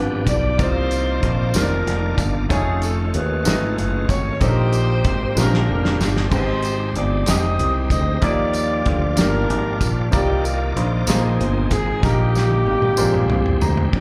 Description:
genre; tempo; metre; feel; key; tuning
slow gospel; 63 BPM (dotted quarters); 6/8; straight; Eb major; A4 = 440 Hz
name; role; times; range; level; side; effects
warm saxophone section; melody; 0.0-13.6 s; Bb3 to Eb5; -26 LUFS; equal; slapback echo
warm baby grand piano; accompaniment; 0.0-14.0 s; G2 to Bb5; -28 LUFS; equal; slapback echo
bright tonewheel organ; sustained chords; 0.0-14.0 s; C3 to G5; -31 LUFS; equal; slow rotary speaker, overdrive, chorus vibrato
fingered electric bass; bass; 0.0-14.0 s; F1 to Eb2; -23 LUFS; equal; none
warm soul drum kit; drums; 0.3-14.0 s; crash cymbal, hi-hat, kick drum, snare drum, toms; -25 LUFS; equal; none
tambourine; percussion; 0.3-13.9 s; none; -34 LUFS; equal; none
room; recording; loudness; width
light reverb, studio reverb; live gig heard through the venue's PA, club reverb; -19 LUFS; mono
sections
0.0-13.9 A section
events
drum fill 5.4-6.3, 12.0-13.9; grand piano fill 13.0-13.9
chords
0.0 G7; 0.6 Cm11; 2.5 F7alt; 4.4 Eb/Bb; 5.4 Bb13; 6.3 Abmaj7; 8.2 Ebmaj9; 10.1 Cm11; 11.1 Bb9sus4; 12.0 Eb/Bb; 13.0 Bb13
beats
| 0.59 1.54 | 2.50 3.45 | 4.41 5.36 | 6.32 7.27 | 8.22 9.18 | 10.13 11.08 | 12.03 12.98 | 13.93

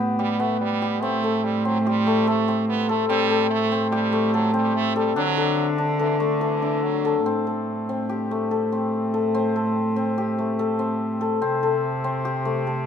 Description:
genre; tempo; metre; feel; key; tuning
contemporary instrumental, chamber music in an uneven meter; 144 BPM; 5/4; straight; A dorian; A4 = 441 Hz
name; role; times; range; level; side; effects
hammered dulcimer; arpeggios; 0.0-12.9 s; A3 to A4; -23 LUFS; left 4 dB; none
rich cello; bass; 0.0-12.9 s; A2 to D3; -25 LUFS; right 2 dB; none
stopped French horn; second line; 0.2-7.3 s; D3 to B3; -27 LUFS; right 8 dB; none
room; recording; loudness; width
moderate studio reverb, RT60 0.8 s; minimal, uncompressed stereo recording; -20 LUFS; side -8 dB against mid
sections
0.0-7.3 A section; 7.3-12.9 B section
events
none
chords
0.0 Gadd9/A; 1.0 Am7; 5.2 Dadd9; 7.3 Am7; 11.4 C5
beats
0.20 0.61 | 1.03 1.45 1.86 2.27 2.69 | 3.10 3.51 3.92 4.33 4.75 | 5.16 5.57 5.99 6.41 6.83 | 7.26 7.68 8.10 8.52 8.94 | 9.35 9.77 10.19 10.60 11.01 | 11.42 11.84 12.26 12.67

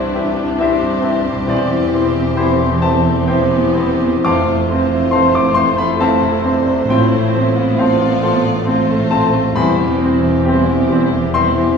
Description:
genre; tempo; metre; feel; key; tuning
classical, romantic movement for piano and orchestra; 67 BPM; 3/4; rubato; C major; A4 = 442 Hz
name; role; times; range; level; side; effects
clear grand piano; melody; 0.0-11.8 s; C2 to D6; -16 LUFS; left 2 dB; none
warm symphonic violin section; melody; 0.0-11.8 s; G4 to D5; -29 LUFS; equal; none
warm symphonic violin section; second line; 0.0-11.8 s; D4 to G4; -27 LUFS; left 5 dB; none
warm symphonic viola section; accompaniment; 0.0-11.8 s; G3 to D4; -22 LUFS; right 2 dB; none
rich symphonic double bass section; bass; 0.0-11.8 s; E1 to C2; -22 LUFS; right 1 dB; none
warm chamber cello section; bass; 0.0-11.8 s; C2 to A2; -22 LUFS; right 1 dB; none
mellow clarinet; second line; 0.1-11.5 s; C4 to E4; -23 LUFS; equal; none
mellow hollow silver concert flute; second line; 0.1-11.4 s; G5 to C6; -30 LUFS; left 6 dB; none
dark cor anglais; second line; 0.2-11.5 s; C5 to E5; -28 LUFS; right 1 dB; none
mellow bassoon; accompaniment; 0.2-11.5 s; E3 to F3; -25 LUFS; right 1 dB; none
clear French horn section; sustained chords; 1.5-9.9 s; C4 to G4; -26 LUFS; left 3 dB; none
room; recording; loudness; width
wet recital hall reverb, RT60 1.6 s; heard from further back in the room, small room ambience; -12 LUFS; side -6 dB against mid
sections
0.0-11.8 A section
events
none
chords
0.0 C; 1.5 C/E; 4.2 Fmaj7; 6.9 F/A; 9.6 C/E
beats
0.59 | 1.47 2.37 3.27 | 4.25 5.13 6.00 | 6.90 7.79 8.68 | 9.57 10.47 11.35

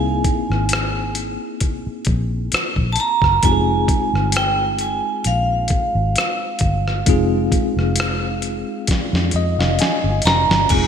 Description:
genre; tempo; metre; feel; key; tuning
R&B, neo-soul; 66 BPM; 4/4; swing 53% on 16ths; F minor; A4 = 441 Hz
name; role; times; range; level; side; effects
vibraphone with hard mallets; melody; 0.0-10.9 s; F5 to Bb5; -21 LUFS; right 4 dB; none
tine electric piano; accompaniment; 0.0-10.9 s; Ab3 to Bb5; -23 LUFS; left 1 dB; fast stereo tremolo
vintage muted fingered electric bass; bass; 0.0-10.9 s; F1 to F2; -21 LUFS; left 1 dB; none
dusty soul sampler-style drum kit; drums; 0.2-10.9 s; crash cymbal, hi-hat, kick drum, rim click, snare drum; -20 LUFS; left 1 dB; gated reverb
room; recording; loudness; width
moderate lush hall reverb, RT60 2.5 s; bright 1980s-style digital production; -16 LUFS; side -8 dB against mid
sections
0.0-10.7 A section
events
drum fill 8.9-10.7; tine electric piano fill 8.9-10.7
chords
0.0 C7alt; 3.4 Fm9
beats
0.70 1.61 2.52 | 3.43 4.34 5.25 6.16 | 7.07 7.97 8.88 9.79 | 10.70

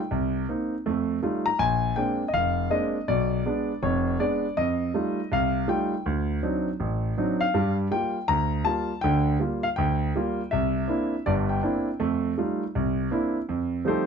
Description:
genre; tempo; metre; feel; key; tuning
solo jazz; 162 BPM; 4/4; swing 63% on 8ths; F mixolydian; A4 = 439 Hz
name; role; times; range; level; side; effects
warm concert grand piano; solo; 0.0-14.1 s; F1 to Bb5; -23 LUFS; equal; none
room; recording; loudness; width
light reverb; close, detailed microphones; -23 LUFS; side -6 dB against mid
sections
0.0-13.5 A section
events
none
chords
0.1 Cm7; 0.9 F9; 1.6 Bb9; 3.1 Bdim7; 4.6 F9; 6.1 D7b9; 7.5 Gm7; 10.5 C9; 12.0 F9; 12.7 C9; 13.5 F9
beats
| 0.11 0.48 0.85 1.23 | 1.60 1.97 2.34 2.71 | 3.08 3.45 3.83 4.20 | 4.57 4.94 5.31 5.68 | 6.05 6.43 6.80 7.17 | 7.54 7.91 8.28 8.66 | 9.03 9.40 9.77 10.14 | 10.51 10.88 11.26 11.63 | 12.00 12.37 12.74 13.11 | 13.48 13.86

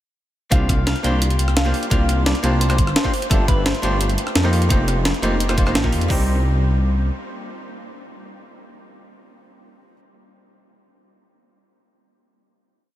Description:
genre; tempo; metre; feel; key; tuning
liquid drum and bass; 172 BPM; 4/4; straight; C minor; A4 = 440 Hz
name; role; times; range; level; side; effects
clean electric guitar; melody; 0.5-4.0 s; A4 to G5; -29 LUFS; equal; phaser, tape echo
archtop guitar, miked and amplified; accompaniment; 0.5-10.0 s; G3 to C5; -24 LUFS; equal; analog delay
dark detuned saw bass; bass; 0.5-7.1 s; F1 to F2; -19 LUFS; equal; none
breakbeat sampler-style drum kit; drums; 0.5-6.1 s; hi-hat, rim click, snare drum; -24 LUFS; equal; none
drum and bass drum kit; drums; 0.5-6.2 s; hi-hat, kick drum; -19 LUFS; equal; none
room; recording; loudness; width
light reverb; none; -16 LUFS; side -13 dB against mid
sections
0.5-6.1 drop; 6.1-8.9 final chord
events
drop 0.5-6.1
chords
0.5 C9sus4; 3.1 G9sus4; 4.5 F9sus4; 6.1 Cm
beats
| 0.52 0.87 1.22 1.56 | 1.91 2.26 2.61 2.96 | 3.31 3.66 4.01 4.36 | 4.70 5.05 5.40 5.75 | 6.10 6.45 6.80 7.15 | 7.50 7.84 8.19 8.54

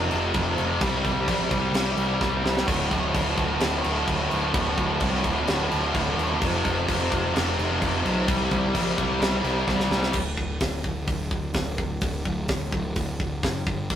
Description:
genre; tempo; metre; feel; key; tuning
heavy metal; 129 BPM; 4/4; straight; unclear; A4 = 436 Hz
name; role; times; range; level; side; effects
heavy high-gain guitar; riff; 0.0-10.2 s; D2 to G3; -24 LUFS; equal; distortion
fuzz picked electric bass; bass; 0.0-14.0 s; D1 to C2; -28 LUFS; equal; overdrive
tight metal drum kit; drums; 0.1-14.0 s; crash cymbal, hi-hat, kick drum, snare drum; -28 LUFS; equal; none
room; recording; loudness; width
moderate studio reverb, RT60 0.7 s; rough rehearsal-room recording; -22 LUFS; side -10 dB against mid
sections
0.0-10.1 A section; 10.1-14.0 B section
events
half time 0.0-10.1; drum fill 2.2-2.7, 9.7-10.1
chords
0.0 F5; 0.8 C5; 2.7 D5; 6.4 F5; 8.3 C5; 10.1 N.C.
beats
0.34 | 0.81 1.27 1.74 2.21 | 2.67 3.14 3.61 4.07 | 4.54 5.01 5.47 5.94 | 6.41 6.87 7.34 7.81 | 8.27 8.74 9.21 9.68 | 10.14 10.61 11.08 11.55 | 12.02 12.48 12.95 13.42 | 13.89

